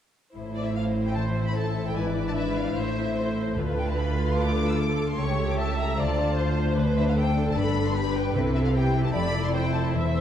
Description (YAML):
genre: classical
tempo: 150 BPM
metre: 4/4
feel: straight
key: A minor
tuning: A4 = 440 Hz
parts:
  - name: warm symphonic violin section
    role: second line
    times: 0.3-10.2 s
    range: D4 to D5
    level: -31 LUFS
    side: left 3 dB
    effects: none
  - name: clear symphonic cello section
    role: bass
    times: 0.3-10.2 s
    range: C#2 to C3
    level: -29 LUFS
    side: right 2 dB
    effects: none
  - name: rich symphonic double bass section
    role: bass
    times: 0.3-10.2 s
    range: E1 to D2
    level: -29 LUFS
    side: right 2 dB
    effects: none
  - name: concert harp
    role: arpeggios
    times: 0.4-10.2 s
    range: G2 to C5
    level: -30 LUFS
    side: left 7 dB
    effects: none
  - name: clear symphonic violin section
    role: melody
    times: 0.5-10.2 s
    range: C5 to E6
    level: -34 LUFS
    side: left 3 dB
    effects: none
  - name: rich symphonic viola section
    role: accompaniment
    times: 1.1-10.2 s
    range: G4 to E5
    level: -31 LUFS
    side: right 1 dB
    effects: none
room: wet scoring stage reverb, RT60 1.9 s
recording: dark, warm production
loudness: -23 LUFS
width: side -10 dB against mid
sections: 0.3-10.2 A section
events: none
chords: 0.3 Am; 2.0 E7/G#; 2.8 Am; 3.6 Dm; 5.2 A7/C#; 6.0 Dm7; 7.6 G; 8.3 Cmaj7; 9.1 Fmaj7